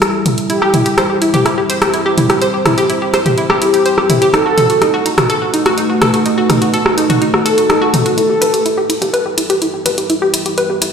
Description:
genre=melodic techno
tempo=125 BPM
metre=4/4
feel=straight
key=E harmonic minor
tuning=A4 = 440 Hz
part: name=deep dark ambient pad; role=sustained chords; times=0.0-10.9 s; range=G3 to C5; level=-19 LUFS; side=right 1 dB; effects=chorus, built-in reverb
part: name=punchy analog drum machine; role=drums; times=0.0-10.9 s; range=hi-hat, rim click, toms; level=-16 LUFS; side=equal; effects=high-pass filter on hats, studio reverb, high-pass filter on cymbals, high-pass filter on snare, high-pass filter on toms
part: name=mellow synth brass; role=melody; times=0.5-8.8 s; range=G4 to A4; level=-18 LUFS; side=left 1 dB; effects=chorus, tape echo
part: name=analog pluck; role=arpeggios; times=0.5-10.9 s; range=D#4 to C5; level=-15 LUFS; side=equal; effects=chorus, ping-pong delay
room=wet lush hall reverb, RT60 1.9 s, digital ambience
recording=played on a big sound system in a bare room, stone room reverb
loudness=-11 LUFS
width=side -6 dB against mid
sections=0.0-8.2 A section; 8.2-10.9 B section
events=build-up 8.2-10.9; filter sweep on synth pluck 8.2-10.9; filter sweep on ambient pad 8.2-10.9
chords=0.5 C; 4.3 B7; 8.2 Em

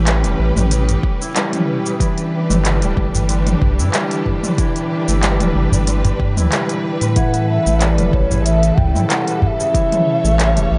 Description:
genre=organic downtempo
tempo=93 BPM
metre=4/4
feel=swing 54% on 16ths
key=E dorian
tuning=A4 = 440 Hz
part: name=warm studio string section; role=sustained chords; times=0.0-10.8 s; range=C#3 to C#5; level=-27 LUFS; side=equal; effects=sidechain pumping
part: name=concert harp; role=arpeggios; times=0.0-10.8 s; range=C#3 to E4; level=-23 LUFS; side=equal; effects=tape echo
part: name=warm sub bass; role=bass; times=0.0-10.8 s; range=D1 to A2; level=-20 LUFS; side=equal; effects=sidechain pumping
part: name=organic electronic drum kit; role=drums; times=0.1-10.7 s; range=handclaps, hi-hat, shaker, toms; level=-24 LUFS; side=equal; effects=overdrive
part: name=udu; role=percussion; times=0.6-9.6 s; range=none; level=-24 LUFS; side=equal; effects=none
part: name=electronic kick drum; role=drums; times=1.0-9.9 s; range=none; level=-22 LUFS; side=equal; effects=none
part: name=mellow hollow low ney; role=melody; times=7.2-10.8 s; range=C#5 to G5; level=-22 LUFS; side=equal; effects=none
part: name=quartz singing bowl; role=texture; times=7.2-10.8 s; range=E4 to E5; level=-31 LUFS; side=equal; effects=none
room=moderate lush hall reverb, RT60 1.9 s, small room ambience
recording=dark, warm production, nothing above 10.3 kHz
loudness=-17 LUFS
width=mono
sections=0.0-10.8 A section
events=none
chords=0.0 Aadd9; 2.0 Em7; 7.2 Aadd9

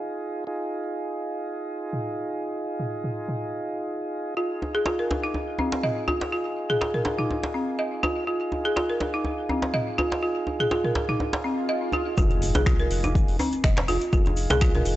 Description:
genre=afro house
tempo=123 BPM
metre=4/4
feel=swing 54% on 16ths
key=F minor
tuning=A4 = 444 Hz
part: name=mellow tonewheel organ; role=stabs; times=0.0-15.0 s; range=Eb4 to Ab4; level=-30 LUFS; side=right 1 dB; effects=slow rotary speaker, sidechain pumping, low-pass filter, tape echo
part: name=deep house drum kit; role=drums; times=1.9-15.0 s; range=finger snaps, hi-hat, toms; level=-32 LUFS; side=equal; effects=overdrive, low-pass filter on hats, low-pass filter on snare, low-pass filter on toms
part: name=folk marimba with hard mallets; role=arpeggios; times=4.4-14.8 s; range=C4 to Eb5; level=-26 LUFS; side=equal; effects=sidechain pumping, tape echo
part: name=djembe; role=percussion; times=4.6-14.8 s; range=none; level=-30 LUFS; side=equal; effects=none
part: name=swell and impact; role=sound effects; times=11.4-14.1 s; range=none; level=-34 LUFS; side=equal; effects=none
part: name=round analog bass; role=bass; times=12.2-15.0 s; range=F1 to C2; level=-26 LUFS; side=equal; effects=sidechain pumping
part: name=electronic kick drum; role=drums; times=12.2-14.7 s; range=none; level=-22 LUFS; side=equal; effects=overdrive
part: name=tube shaker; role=percussion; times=12.2-15.0 s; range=none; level=-42 LUFS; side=left 2 dB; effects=none
room=light reverb, studio reverb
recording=dry, gritty hardware recording, transformer saturation, nothing above 8.0 kHz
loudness=-23 LUFS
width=side -15 dB against mid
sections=0.0-12.2 A section; 12.2-15.0 B section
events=swell 11.4-12.2; drop 12.2-15.0; impact 12.2-14.1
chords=0.0 Fm7

